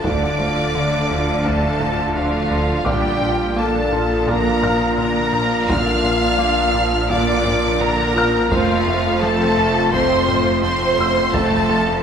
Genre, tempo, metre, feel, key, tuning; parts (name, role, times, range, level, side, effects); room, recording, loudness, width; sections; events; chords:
cinematic, hybrid orchestral and electronic film score; 85 BPM; 4/4; straight; A4 = 442 Hz
rich symphonic violin section; melody; 0.0-12.0 s; F5 to F6; -23 LUFS; equal
clear symphonic violin section; second line; 0.0-12.0 s; F4 to F5; -24 LUFS; equal
rich symphonic viola section; accompaniment; 0.0-12.0 s; D3 to F4; -26 LUFS; right 2 dB
mellow French horn section; sustained chords; 0.0-12.0 s; F3 to A4; -23 LUFS; left 3 dB
warm analog pad; sustained chords; 0.0-12.0 s; Bb2 to F5; -24 LUFS; right 1 dB; chorus
harp-like synth pluck; arpeggios; 0.0-11.9 s; D3 to Bb4; -27 LUFS; right 1 dB; chorus, phaser
rubbery square bass; riff; 0.0-11.9 s; D2 to Bb3; -28 LUFS; left 1 dB
rich symphonic cello section; bass; 0.0-12.0 s; F2 to D3; -26 LUFS; right 2 dB
rich symphonic double bass section; bass; 0.0-12.0 s; F1 to D2; -28 LUFS; right 2 dB
warm sub bass; bass; 0.0-12.0 s; D1 to Bb1; -31 LUFS; equal
taiko ensemble; drums; 0.0-12.0 s; -27 LUFS; right 1 dB
felt-muted upright piano; texture; 0.0-12.0 s; D5 to F6; -28 LUFS; left 1 dB; digital delay
wet scoring stage reverb, RT60 1.7 s; studio reverb; -15 LUFS; side -7 dB against mid
0.0-12.0 A section
0.0 Dm; 2.9 Bb; 8.5 F